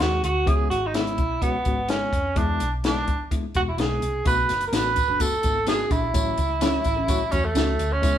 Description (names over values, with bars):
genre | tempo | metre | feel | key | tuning
uptempo 1960s-style soul | 127 BPM | 4/4 | straight | unclear | A4 = 440 Hz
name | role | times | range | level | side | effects
breathy tenor saxophone | melody | 0.0-8.2 s | A3 to B4 | -24 LUFS | right 2 dB | none
barky reed electric piano | accompaniment | 0.0-8.2 s | F#3 to G#4 | -31 LUFS | left 6 dB | overdrive, fast tremolo
vintage muted picked electric bass | bass | 0.0-8.2 s | E1 to E#2 | -28 LUFS | equal | none
compact cocktail drum kit | drums | 0.0-8.1 s | hi-hat, kick drum, snare drum | -26 LUFS | left 1 dB | none
tambourine | percussion | 4.3-8.1 s | none | -36 LUFS | left 2 dB | none
mellow electric guitar | stabs | 4.7-7.7 s | C#4 to A4 | -30 LUFS | right 4 dB | none
room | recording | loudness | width
wet studio reverb, RT60 0.8 s | band playing live in one room | -21 LUFS | side -10 dB against mid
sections
0.0-8.2 A section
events
none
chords
0.5 C#m7; 2.4 E7; 4.3 Bm7; 6.1 F#m7/A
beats
0.00 | 0.47 0.94 1.42 1.89 | 2.37 2.84 3.31 3.79 | 4.26 4.73 5.20 5.67 | 6.15 6.62 7.09 7.56 | 8.03